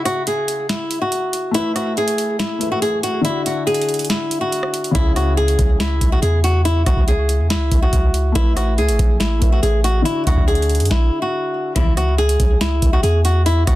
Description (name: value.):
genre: hip hop, trap.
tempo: 141 BPM.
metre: 4/4.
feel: half-time.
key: C# phrygian.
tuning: A4 = 440 Hz.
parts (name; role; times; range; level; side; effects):
felt-muted upright piano; accompaniment; 0.0-11.7 s; C#3 to E5; -26 LUFS; left 2 dB; none.
flamenco guitar; melody; 0.1-13.8 s; E4 to G#4; -20 LUFS; left 1 dB; tape echo.
booming analog drum machine; drums; 0.1-13.8 s; hi-hat, kick drum, rim click, snare drum; -19 LUFS; equal; none.
warm 808-style bass; bass; 4.9-13.8 s; A1 to F#2; -17 LUFS; equal; none.
warm symphonic string section; stabs; 11.8-11.9 s; G#2 to E3; -26 LUFS; left 4 dB; none.
room: studio ambience.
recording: dense, heavily limited modern master.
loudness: -15 LUFS.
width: side -16 dB against mid.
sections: 0.0-11.8 A section; 11.8-13.8 B section.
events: break 0.0-5.0; kick muted 4.1-5.0; stop 10.9-11.8.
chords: 0.0 C#m; 1.5 Asus2; 3.2 Dadd9; 5.0 C#m; 8.4 Asus2; 10.1 Dadd9; 11.8 C#m.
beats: 0.27 0.69 1.12 | 1.55 1.97 2.40 2.82 | 3.25 3.67 4.10 4.52 | 4.95 5.38 5.80 6.23 | 6.65 7.08 7.50 7.93 | 8.35 8.78 9.21 9.63 | 10.06 10.48 10.91 11.33 | 11.76 12.18 12.61 13.04 | 13.46.